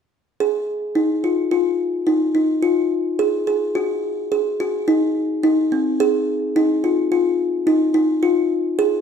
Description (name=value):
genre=contemporary instrumental, contemporary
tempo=107 BPM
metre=5/4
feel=straight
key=Ab mixolydian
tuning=A4 = 443 Hz
part: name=kalimba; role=arpeggios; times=0.4-9.0 s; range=C4 to Ab4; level=-17 LUFS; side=left 1 dB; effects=none
room=moderate recital hall reverb, RT60 1.4 s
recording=none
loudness=-17 LUFS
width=side -7 dB against mid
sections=0.4-9.0 A section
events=none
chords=none